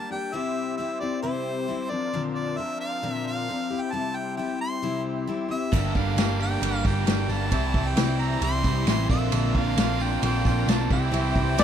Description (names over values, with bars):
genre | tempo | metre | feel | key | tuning
folk rock and heartland rock | 134 BPM | 4/4 | straight | unclear | A4 = 439 Hz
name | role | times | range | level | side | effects
warm harmonica | melody | 0.0-11.6 s | C5 to C6 | -31 LUFS | right 1 dB | tape echo
picked steel-string acoustic guitar | accompaniment | 0.0-11.6 s | G2 to Bb4 | -30 LUFS | left 6 dB | none
musette accordion | sustained chords | 0.0-11.6 s | Bb3 to C5 | -38 LUFS | right 2 dB | stereo widening
raw garage guitar | riff | 5.7-11.6 s | G2 to G4 | -29 LUFS | right 4 dB | overdrive
hollow-body short-scale picked electric bass | bass | 5.7-11.6 s | G1 to C2 | -26 LUFS | right 1 dB | none
soft brush drum kit | drums | 5.7-11.6 s | crash cymbal, kick drum, ride cymbal, snare drum | -26 LUFS | equal | none
tambourine | percussion | 5.7-11.6 s | none | -44 LUFS | right 17 dB | none
clear upright piano | second line | 11.6 s | D5 | -19 LUFS | left 5 dB | none
room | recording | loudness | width
small room ambience | none | -23 LUFS | side -9 dB against mid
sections
0.0-11.6 A section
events
none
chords
0.3 C; 1.9 Bbadd9; 3.7 C; 5.7 Gm; 7.5 C; 9.1 Bbadd9; 10.9 C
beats
| 0.34 0.79 1.24 1.68 | 2.13 2.58 3.03 3.48 | 3.93 4.38 4.83 5.28 | 5.72 6.17 6.62 7.07 | 7.52 7.97 8.42 8.87 | 9.32 9.78 10.22 10.68 | 11.13 11.58